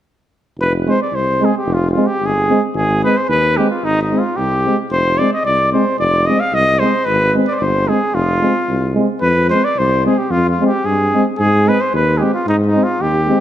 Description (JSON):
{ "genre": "balkan folk, Balkan brass band", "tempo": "111 BPM", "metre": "2/4", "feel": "straight", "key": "F dorian sharp4", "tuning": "A4 = 440 Hz", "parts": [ { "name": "warm trumpet", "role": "melody", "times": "0.6-13.4 s", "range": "Eb4 to F5", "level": "-16 LUFS", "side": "equal", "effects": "none" }, { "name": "warm tuba", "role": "bass", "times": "0.6-13.3 s", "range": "F1 to Ab2", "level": "-19 LUFS", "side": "equal", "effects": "none" }, { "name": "mellow euphonium", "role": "accompaniment", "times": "0.9-13.4 s", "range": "C4", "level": "-22 LUFS", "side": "left 5 dB", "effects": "none" }, { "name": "warm euphonium", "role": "accompaniment", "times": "0.9-13.4 s", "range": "Ab3", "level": "-21 LUFS", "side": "right 5 dB", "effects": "none" } ], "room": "moderate scoring stage reverb, RT60 2.0 s", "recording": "none", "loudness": "-13 LUFS", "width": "side -11 dB against mid", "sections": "0.6-9.2 A section; 9.2-13.4 A section", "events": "none", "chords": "0.6 Fm; 2.7 Ab; 4.9 Fm; 7.1 Ab; 8.2 Fm; 11.4 Ab", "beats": "| 0.59 1.13 | 1.67 2.21 | 2.75 3.29 | 3.83 4.37 | 4.91 5.45 | 5.99 6.53 | 7.07 7.61 | 8.15 8.69 | 9.23 9.77 | 10.31 10.85 | 11.39 11.93 | 12.47 13.01" }